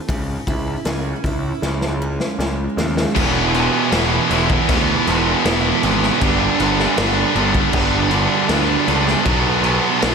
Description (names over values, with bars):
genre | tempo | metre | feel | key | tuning
quiet-loud alternative rock | 79 BPM | 4/4 | straight | unclear | A4 = 439 Hz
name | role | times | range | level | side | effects
picked steel-string acoustic guitar | arpeggios | 0.0-3.2 s | C#3 to E4 | -26 LUFS | right 2 dB | digital delay
fuzz picked electric bass | bass | 0.1-10.1 s | E1 to D#2 | -22 LUFS | left 1 dB | overdrive
raw garage drum kit | drums | 0.1-10.1 s | crash cymbal, hi-hat, kick drum, snare drum | -21 LUFS | equal | none
heavy high-gain guitar | riff | 3.2-10.1 s | G2 to E4 | -20 LUFS | left 12 dB | distortion
high-gain distorted guitar | riff | 3.2-10.1 s | E2 to B3 | -19 LUFS | right 12 dB | distortion, slapback echo
room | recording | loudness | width
moderate lush hall reverb, RT60 2.6 s | big arena sound | -15 LUFS | side -6 dB against mid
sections
0.0-3.2 A section; 3.2-10.1 B section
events
drum fill 1.6-3.2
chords
0.1 C#m; 3.2 E; 6.2 G; 9.3 Bm